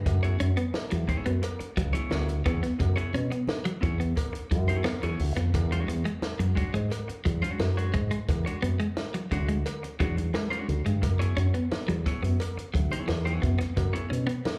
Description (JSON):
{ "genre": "funk", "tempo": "88 BPM", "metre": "4/4", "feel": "straight", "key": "unclear", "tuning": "A4 = 442 Hz", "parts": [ { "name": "fingered electric bass with an envelope filter", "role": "bass", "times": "0.0-14.3 s", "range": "C#2 to B2", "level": "-29 LUFS", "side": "equal", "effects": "none" }, { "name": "clean electric guitar", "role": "accompaniment", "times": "0.1-14.3 s", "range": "G#3 to C#5", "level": "-38 LUFS", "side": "equal", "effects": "none" }, { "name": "compact cocktail drum kit", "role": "drums", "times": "0.1-14.6 s", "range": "hi-hat, kick drum, snare drum", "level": "-35 LUFS", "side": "equal", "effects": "none" }, { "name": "congas", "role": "percussion", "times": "0.1-14.6 s", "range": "none", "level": "-41 LUFS", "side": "equal", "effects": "none" }, { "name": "cowbell", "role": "percussion", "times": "0.1-14.6 s", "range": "none", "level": "-42 LUFS", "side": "equal", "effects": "slapback echo" }, { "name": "clean electric guitar", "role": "riff", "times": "0.2-14.4 s", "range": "F#3 to C#4", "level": "-35 LUFS", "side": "equal", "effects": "tremolo, slapback echo" } ], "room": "light reverb, studio ambience", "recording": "live gig heard through the venue's PA, club reverb", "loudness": "-28 LUFS", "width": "mono", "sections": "0.0-14.6 A section", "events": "none", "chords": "0.1 F#9sus4; 5.5 E13; 11.0 F#9sus4", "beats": "| 0.06 0.75 1.43 2.12 | 2.80 3.49 4.17 4.86 | 5.54 6.23 6.91 7.60 | 8.28 8.97 9.65 10.34 | 11.02 11.71 12.39 13.08 | 13.76 14.45" }